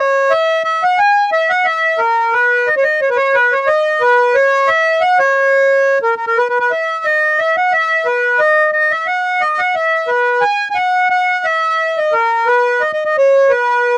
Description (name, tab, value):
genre	musette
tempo	178 BPM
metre	3/4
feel	swing 55% on 8ths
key	B major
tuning	A4 = 435 Hz
part	accordion	solo	0.0-14.0 s	A#4 to G#5	-10 LUFS	equal	none
room	moderate booth ambience, RT60 0.2 s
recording	home recording on cassette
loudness	-10 LUFS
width	side -21 dB against mid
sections	0.0-14.0 A section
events	none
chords	none